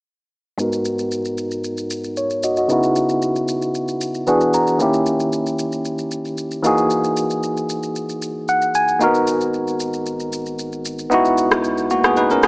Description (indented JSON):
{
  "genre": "amapiano",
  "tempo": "114 BPM",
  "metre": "4/4",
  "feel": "straight",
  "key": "G# minor",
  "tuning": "A4 = 440 Hz",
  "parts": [
    { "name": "bell-like tine electric piano", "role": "accompaniment", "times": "0.6-12.5 s", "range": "G#2 to A#5", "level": "-17 LUFS", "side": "equal", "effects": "medium stereo tremolo, low-pass filter" },
    { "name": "electronic shaker and rim click", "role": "drums", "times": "0.6-12.5 s", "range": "none", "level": "-24 LUFS", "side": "equal", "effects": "none" },
    { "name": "saturated sub bass", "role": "bass", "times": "9.0-12.5 s", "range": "G#1 to C#2", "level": "-32 LUFS", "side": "equal", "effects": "none" }
  ],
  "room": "moderate lush hall reverb, RT60 2.9 s",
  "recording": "worn, warbling old tape, cassette tape, warbly pitch drift, small speaker sound",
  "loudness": "-17 LUFS",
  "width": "side -36 dB against mid",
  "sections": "0.6-12.5 A section",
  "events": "filter sweep on tine electric piano 0.6-12.5; tine electric piano fill 4.0-4.8, 8.2-9.0",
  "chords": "0.6 G#m9; 2.7 C#m11; 4.3 E9; 4.8 D#7b9; 6.6 Emaj9#11; 9.0 G#m9; 11.1 C#m11",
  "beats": "| 0.59 1.11 1.64 2.17 | 2.69 3.22 3.75 4.27 | 4.80 5.32 5.85 6.38 | 6.90 7.43 7.96 8.48 | 9.01 9.54 10.06 10.59 | 11.11 11.64 12.17"
}